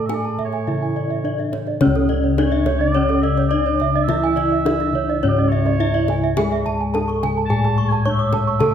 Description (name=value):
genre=Balinese gamelan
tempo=105 BPM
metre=4/4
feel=straight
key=C# pelog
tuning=A4 = 440 Hz
part: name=gamelan-type bronze metallophone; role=melody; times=0.0-8.7 s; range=C#4 to C#5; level=-23 LUFS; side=equal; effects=none
part: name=warm oboe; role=second line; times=0.0-8.7 s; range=C#5 to A5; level=-26 LUFS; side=right 6 dB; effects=none
part: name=gamelan-type bronze metallophone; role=accompaniment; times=0.0-8.7 s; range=C#3 to A3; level=-27 LUFS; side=left 2 dB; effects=none
part: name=gamelan-type bronze metallophone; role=arpeggios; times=0.0-8.6 s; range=A4 to C#6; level=-26 LUFS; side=right 8 dB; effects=none
part: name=gamelan-type bossed gongs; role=bass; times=0.0-8.7 s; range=C#2 to A4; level=-21 LUFS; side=left 1 dB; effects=none
part: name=gamelan-type bronze metallophone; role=arpeggios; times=0.1-8.7 s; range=C#5 to D6+35c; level=-26 LUFS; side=left 3 dB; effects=none
part: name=kendang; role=percussion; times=0.1-8.7 s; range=none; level=-27 LUFS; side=left 4 dB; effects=none
room=moderate recital hall reverb, RT60 1.4 s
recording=none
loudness=-16 LUFS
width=side -8 dB against mid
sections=0.0-1.8 A section; 1.8-8.7 A section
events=none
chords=none